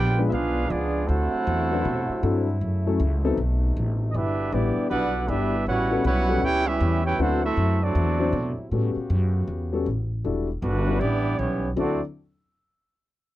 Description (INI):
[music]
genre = jazz, big band swing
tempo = 157 BPM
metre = 4/4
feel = swing 64% on 8ths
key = D major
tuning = A4 = 439 Hz
[part]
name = mellow trumpet section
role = melody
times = 0.0-12.0 s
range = G3 to G5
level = -26 LUFS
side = right 2 dB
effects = none
[part]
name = warm trombone section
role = second line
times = 0.0-12.0 s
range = D3 to G4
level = -29 LUFS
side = right 3 dB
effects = none
[part]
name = clear trombone section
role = sustained chords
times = 0.0-10.2 s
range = B2 to G4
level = -34 LUFS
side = left 1 dB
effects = none
[part]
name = upright bass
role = bass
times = 0.0-12.0 s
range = E1 to B2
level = -25 LUFS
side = equal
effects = none
[part]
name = dark upright piano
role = accompaniment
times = 0.2-12.0 s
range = F#3 to C5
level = -26 LUFS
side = left 5 dB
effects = none
[sound]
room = little or no reverb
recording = dry, close 1970s-style studio recording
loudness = -22 LUFS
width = side -15 dB against mid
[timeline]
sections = 0.0-10.2 A section; 10.2-11.8 B section; 11.8-13.3 C section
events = none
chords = 0.0 G#dim7; 1.1 D13; 2.6 F#m7; 3.4 B7b9; 4.1 Em7; 5.7 A13; 7.2 D13; 8.7 A13; 10.2 Em11; 11.0 A9; 11.8 D9